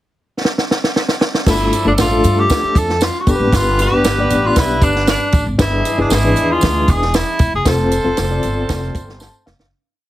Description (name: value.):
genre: uptempo 1960s-style soul.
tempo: 116 BPM.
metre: 4/4.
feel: straight.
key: unclear.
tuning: A4 = 439 Hz.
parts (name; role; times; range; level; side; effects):
compact cocktail drum kit; drums; 0.5-9.7 s; crash cymbal, hi-hat, kick drum, snare drum; -17 LUFS; right 1 dB; none.
clear tenor saxophone; melody; 1.5-9.2 s; D4 to A4; -18 LUFS; equal; none.
clear horn section; second line; 1.5-9.4 s; E3 to C5; -24 LUFS; right 1 dB; none.
reed electric piano; accompaniment; 1.5-9.7 s; G2 to A5; -19 LUFS; left 2 dB; fast tremolo.
upright bass; bass; 1.5-9.7 s; E1 to G2; -19 LUFS; equal; none.
tambourine; percussion; 1.5-9.6 s; none; -30 LUFS; right 3 dB; none.
room: light reverb, small room ambience.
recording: heavily compressed radio sound.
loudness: -13 LUFS.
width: side -14 dB against mid.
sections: 0.0-1.5 pickup bar; 1.5-9.7 verse.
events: drum fill 0.4-1.5, 9.2-9.7; fade-out 7.7-9.7; reed electric piano fill 9.0-9.7.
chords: 0.0 N.C.; 1.5 Dm/G; 3.3 G; 5.6 E7/G; 7.7 F.